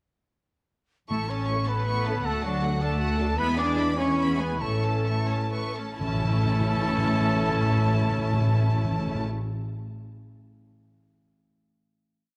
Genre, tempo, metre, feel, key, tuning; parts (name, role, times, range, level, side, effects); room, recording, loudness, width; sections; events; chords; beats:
cinematic, heroic adventure film score; 82-107 BPM (dotted quarters); 6/8; straight; A major; A4 = 439 Hz
warm symphonic violin section; melody; 1.1-9.2 s; F#5 to C#6; -39 LUFS; equal
silver concert flute; second line; 1.1-9.2 s; F#5 to D6; -37 LUFS; equal
warm symphonic violin section; second line; 1.1-9.2 s; E4 to C#5; -41 LUFS; equal
clear symphonic viola section; accompaniment; 1.1-9.2 s; G#3 to D4; -40 LUFS; equal
mellow trumpet; stabs; 1.1-9.2 s; F#4 to D5; -35 LUFS; equal
rich symphonic cello section; bass; 1.1-9.2 s; F#3 to D4; -33 LUFS; equal
warm symphonic double bass section; bass; 1.1-9.2 s; A1 to E2; -32 LUFS; equal
timpani; percussion; 1.1-1.6, 4.6-9.2 s; A2; -30 LUFS; equal
dark trombone section; sustained chords; 1.5-9.2 s; E3 to A3; -40 LUFS; equal
mellow French horn section; sustained chords; 1.5-9.2 s; B3 to A4; -39 LUFS; equal
moderate scoring stage reverb, RT60 2.1 s; -26 LUFS; mono
1.1-6.0 theme; 6.0-8.9 final chord
slowing down 2.8-6.0
1.1 A; 2.3 D; 3.4 E; 4.6 A
| 1.10 1.68 | 2.25 2.82 | 3.39 3.98 | 4.61 5.28 | 6.00 6.72 | 7.44 8.16